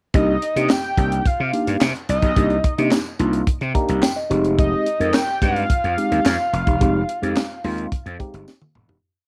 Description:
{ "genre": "early-eighties boogie funk", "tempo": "108 BPM", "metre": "4/4", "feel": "straight", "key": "C minor", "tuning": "A4 = 440 Hz", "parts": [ { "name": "fat analog lead", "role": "melody", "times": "0.1-8.4 s", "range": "Eb5 to G5", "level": "-26 LUFS", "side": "equal", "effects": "cassette tape" }, { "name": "mellow tine electric piano", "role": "accompaniment", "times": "0.1-9.0 s", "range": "Ab3 to Bb5", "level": "-25 LUFS", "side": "equal", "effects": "phaser, cassette tape, plate reverb" }, { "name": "gritty slap bass", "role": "bass", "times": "0.1-9.0 s", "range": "E1 to C3", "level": "-25 LUFS", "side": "equal", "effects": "overdrive" }, { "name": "tight funk drum kit", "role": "drums", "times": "0.1-9.0 s", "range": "handclaps, hi-hat, kick drum, snare drum, toms", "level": "-23 LUFS", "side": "equal", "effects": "none" }, { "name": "tambourine", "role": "percussion", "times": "0.7-8.6 s", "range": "none", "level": "-39 LUFS", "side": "equal", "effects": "none" } ], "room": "light reverb", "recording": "home recording on cassette", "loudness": "-20 LUFS", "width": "mono", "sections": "0.1-9.0 verse", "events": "tine electric piano fill 3.5-4.6; fade-out 6.8-9.0; drum fill 8.5-9.0", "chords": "0.1 Cm9; 4.3 Fm7" }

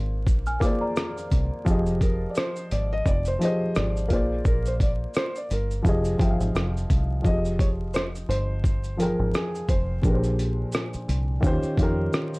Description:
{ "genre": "lo-fi hip hop", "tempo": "86 BPM", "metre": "4/4", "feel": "swing 58% on 16ths", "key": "F dorian, F minor from 7.2 s", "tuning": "A4 = 440 Hz", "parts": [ { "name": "dark upright piano", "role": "accompaniment", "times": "0.0-12.4 s", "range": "Bb2 to G5", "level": "-28 LUFS", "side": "equal", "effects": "none" }, { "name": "deep dub fingered electric bass", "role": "bass", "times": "0.0-12.1 s", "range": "F1 to F2", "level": "-27 LUFS", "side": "equal", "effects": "transformer saturation" }, { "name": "dusty soul sampler-style drum kit", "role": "drums", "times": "0.3-12.4 s", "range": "hi-hat, kick drum, rim click, shaker", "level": "-24 LUFS", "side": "equal", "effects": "none" }, { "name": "small celesta", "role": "second line", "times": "0.5-1.6 s", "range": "D5 to F6", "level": "-32 LUFS", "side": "equal", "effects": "analog delay" }, { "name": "felt-muted upright piano", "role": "melody", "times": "2.0-10.7 s", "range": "Ab4 to Eb5", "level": "-31 LUFS", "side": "equal", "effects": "none" } ], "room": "little or no reverb", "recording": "dry, gritty hardware recording, vinyl crackle", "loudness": "-22 LUFS", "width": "side -26 dB against mid", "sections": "0.0-7.2 A section; 7.2-12.4 B section", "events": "none", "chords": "0.0 Bb7; 1.7 Fm9; 4.1 Bb7; 5.8 Fm7; 7.2 Fm9; 10.0 Bb13; 11.4 Eb13" }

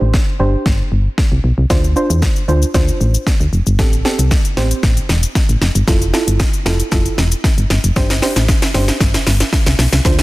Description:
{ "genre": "dance-pop", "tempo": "115 BPM", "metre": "4/4", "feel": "straight", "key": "unclear", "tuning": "A4 = 440 Hz", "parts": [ { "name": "soft round pluck", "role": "accompaniment", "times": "0.0-10.2 s", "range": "C4 to C5", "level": "-20 LUFS", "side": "right 2 dB", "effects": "chorus, sidechain pumping" }, { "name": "solid FM bass", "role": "bass", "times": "0.0-10.2 s", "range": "E1 to E2", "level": "-15 LUFS", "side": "equal", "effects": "sidechain pumping" }, { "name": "house drum kit", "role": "drums", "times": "0.1-10.2 s", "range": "hi-hat, kick drum, shaker, snare drum", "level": "-15 LUFS", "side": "equal", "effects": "none" } ], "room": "little or no reverb", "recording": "dense, heavily limited modern master", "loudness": "-12 LUFS", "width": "side -19 dB against mid", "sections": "0.0-10.2 A section", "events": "build-up 0.0-10.2; drum fill 0.0-10.2", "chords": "0.0 Gsus4; 1.7 Dm7; 3.8 Am7; 5.9 Fmaj7; 8.0 Gsus4" }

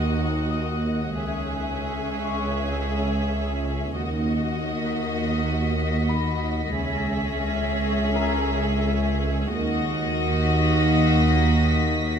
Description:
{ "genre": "cinematic", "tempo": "86 BPM", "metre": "4/4", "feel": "straight", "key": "Eb phrygian", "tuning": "A4 = 440 Hz", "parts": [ { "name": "dark studio violin section", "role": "melody", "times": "0.0-12.2 s", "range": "Eb5 to Fb5", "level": "-31 LUFS", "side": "left 4 dB", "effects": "none" }, { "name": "warm studio violin section", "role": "second line", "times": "0.0-12.2 s", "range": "Gb4 to Ab4", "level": "-30 LUFS", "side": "equal", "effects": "none" }, { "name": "rich studio viola section", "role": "accompaniment", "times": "0.0-12.2 s", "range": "Bb3 to Db4", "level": "-31 LUFS", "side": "right 1 dB", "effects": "none" }, { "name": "dark studio double bass section", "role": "bass", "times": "0.0-12.2 s", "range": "Db2 to Eb2", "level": "-28 LUFS", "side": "right 3 dB", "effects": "none" }, { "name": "warm studio cello section", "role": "bass", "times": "0.0-12.2 s", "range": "Db2 to Eb2", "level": "-28 LUFS", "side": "right 1 dB", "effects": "none" }, { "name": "analog drone", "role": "drone", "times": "0.0-12.2 s", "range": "Db2 to Eb2", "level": "-29 LUFS", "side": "equal", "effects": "chorus" }, { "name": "concert harp", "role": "texture", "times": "0.0-12.1 s", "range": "Bb4 to Gb6", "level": "-35 LUFS", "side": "left 9 dB", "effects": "none" }, { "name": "dark studio violin section", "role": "texture", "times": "0.0-12.2 s", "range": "Eb6 to Cb7", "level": "-34 LUFS", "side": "left 2 dB", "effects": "none" } ], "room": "light reverb", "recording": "close, detailed microphones", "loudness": "-21 LUFS", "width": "side -7 dB against mid", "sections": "0.0-12.2 A section", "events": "none", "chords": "0.0 Ebm; 1.2 Dbm; 4.0 Ebm; 6.8 Dbm; 9.6 Ebm" }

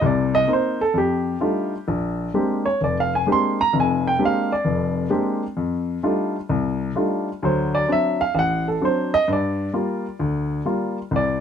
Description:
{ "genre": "jazz", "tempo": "130 BPM", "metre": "4/4", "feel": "swing 65% on 8ths", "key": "unclear", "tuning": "A4 = 440 Hz", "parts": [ { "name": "warm grand piano", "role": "solo", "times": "0.0-11.4 s", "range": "F1 to C6", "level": "-19 LUFS", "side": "equal", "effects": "none" } ], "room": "light reverb", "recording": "close, detailed microphones", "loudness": "-19 LUFS", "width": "side -8 dB against mid", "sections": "0.0-11.4 A section", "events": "grand piano solo 0.0-11.4", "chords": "0.0 Cm7; 0.9 F13; 1.9 Bb13; 5.6 F13; 7.4 D7; 9.3 Gm7" }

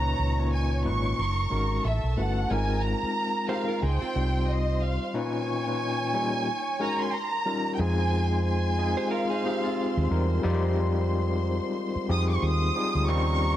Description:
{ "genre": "soul", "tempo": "91 BPM", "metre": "4/4", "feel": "swing 58% on 16ths", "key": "unclear", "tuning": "A4 = 438 Hz", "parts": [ { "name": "warm studio violin section", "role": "melody", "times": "0.0-13.6 s", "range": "Eb5 to Eb6", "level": "-30 LUFS", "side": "right 2 dB", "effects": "none" }, { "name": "warm studio string section", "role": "second line", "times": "0.0-13.6 s", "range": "A4 to Db6", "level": "-37 LUFS", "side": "right 1 dB", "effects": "none" }, { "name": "overdriven tine electric piano", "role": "accompaniment", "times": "0.0-13.6 s", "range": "Bb2 to Db5", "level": "-29 LUFS", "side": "left 3 dB", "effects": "fast tremolo" }, { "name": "hollow-body short-scale fingered electric bass", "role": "bass", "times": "0.0-13.6 s", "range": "Gb1 to F2", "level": "-26 LUFS", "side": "right 1 dB", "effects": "none" }, { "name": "direct-recorded clean electric guitar", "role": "riff", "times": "3.5-5.0, 9.0-10.6 s", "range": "C4 to C5", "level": "-35 LUFS", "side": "right 5 dB", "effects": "none" }, { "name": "tonewheel organ", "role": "sustained chords", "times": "13.1-13.6 s", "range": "Db3 to F4", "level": "-37 LUFS", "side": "right 1 dB", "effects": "none" } ], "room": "moderate plate reverb, RT60 3.4 s", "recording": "dark, warm production", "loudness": "-24 LUFS", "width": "side -12 dB against mid", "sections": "0.0-7.8 A section; 7.8-13.6 B section", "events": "none", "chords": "0.0 Db13; 1.2 Gb69; 1.8 A69; 2.5 Ab69; 3.8 Dbmaj9#11 (rootless); 5.1 Db13; 6.5 Gb69; 7.1 Eb9; 7.8 Fm9" }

